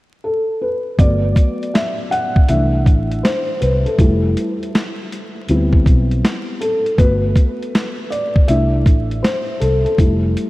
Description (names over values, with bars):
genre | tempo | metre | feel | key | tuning
lo-fi hip hop | 80 BPM | 4/4 | swing 66% on 16ths | G major | A4 = 440 Hz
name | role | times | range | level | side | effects
felt-muted upright piano | accompaniment | 0.2-10.5 s | E3 to F#5 | -19 LUFS | left 1 dB | cassette tape
vintage muted fingered electric bass | bass | 1.0-10.3 s | F1 to D2 | -17 LUFS | equal | none
boom bap sampler-style drum kit | drums | 1.0-10.5 s | hi-hat, kick drum, snare drum | -15 LUFS | equal | none
room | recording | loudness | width
light reverb, digital ambience | vinyl crackle | -14 LUFS | side -18 dB against mid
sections
1.0-10.5 A section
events
felt piano solo 1.0-10.5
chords
0.0 N.C.; 1.0 Gmaj9; 2.5 C69; 4.0 Fmaj9; 5.5 D13sus4; 7.0 Gmaj9; 8.5 C69; 10.0 Fmaj9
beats
0.23 | 0.98 1.74 2.48 3.23 | 3.98 4.74 5.49 6.24 | 6.99 7.74 8.48 9.23 | 9.98